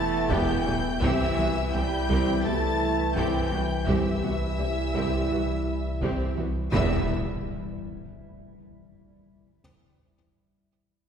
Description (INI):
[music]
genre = cinematic, hybrid orchestral and electronic film score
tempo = 84 BPM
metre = 4/4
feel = straight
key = E minor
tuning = A4 = 440 Hz
[part]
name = rich studio violin section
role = melody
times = 0.0-7.1 s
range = E6 to A6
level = -37 LUFS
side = left 3 dB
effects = none
[part]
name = rich symphonic violin section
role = second line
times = 0.0-7.1 s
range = E5 to A5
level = -34 LUFS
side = left 1 dB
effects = none
[part]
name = warbly tape-like pad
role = sustained chords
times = 0.0-7.1 s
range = E3 to E5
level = -34 LUFS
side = left 1 dB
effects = chorus, built-in reverb
[part]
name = warm French horn section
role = sustained chords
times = 0.0-7.1 s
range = E3 to E4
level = -33 LUFS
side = left 3 dB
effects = none
[part]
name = warm trombone section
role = sustained chords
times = 0.0-7.1 s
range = E3 to E4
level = -33 LUFS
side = right 6 dB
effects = none
[part]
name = pure sine sub bass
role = bass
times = 0.0-7.1 s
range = E1 to C2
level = -32 LUFS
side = equal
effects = none
[part]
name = felt-muted upright piano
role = texture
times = 0.0-6.8 s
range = G5 to E6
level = -53 LUFS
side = left 1 dB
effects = none
[part]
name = rich symphonic viola section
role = accompaniment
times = 0.3-7.1 s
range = F#3 to G4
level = -33 LUFS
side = right 1 dB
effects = none
[part]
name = resonant blip pluck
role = arpeggios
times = 0.3-6.6 s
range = C3 to G3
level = -39 LUFS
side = left 1 dB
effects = none
[part]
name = clear symphonic double bass section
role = bass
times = 0.3-7.1 s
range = E1 to C2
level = -33 LUFS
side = right 2 dB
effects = none
[part]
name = rich symphonic cello section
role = bass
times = 0.3-7.1 s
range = C2 to E2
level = -33 LUFS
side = right 2 dB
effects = none
[part]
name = taiko ensemble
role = drums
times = 0.3-6.7 s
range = none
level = -34 LUFS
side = left 1 dB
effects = none
[part]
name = impact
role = sound effects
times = 6.7-9.6 s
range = none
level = -35 LUFS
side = equal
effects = none
[sound]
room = wet scoring stage reverb, RT60 1.7 s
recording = heard from further back in the room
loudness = -24 LUFS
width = side -7 dB against mid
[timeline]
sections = 0.0-6.7 A section; 6.7-9.6 B section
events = impact 6.7-9.6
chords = 0.0 Em; 1.0 C; 6.7 Em